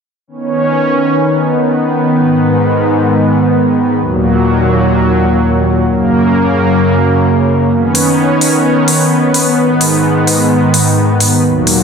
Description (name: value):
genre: EDM, festival progressive house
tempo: 129 BPM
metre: 4/4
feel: straight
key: B major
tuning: A4 = 440 Hz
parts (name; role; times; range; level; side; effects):
- lush unison pad; sustained chords; 0.3-11.8 s; D#2 to C#4; -9 LUFS; equal; chorus
- electronic hi-hat; drums; 7.9-11.8 s; none; -14 LUFS; equal; overdrive
room: wet scoring stage reverb, RT60 1.5 s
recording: dense, heavily limited modern master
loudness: -9 LUFS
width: side -6 dB against mid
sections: 0.3-11.8 A section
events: none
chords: 0.3 Badd9; 2.1 G#m; 4.0 D#m; 5.9 F#; 7.7 Badd9; 9.6 G#m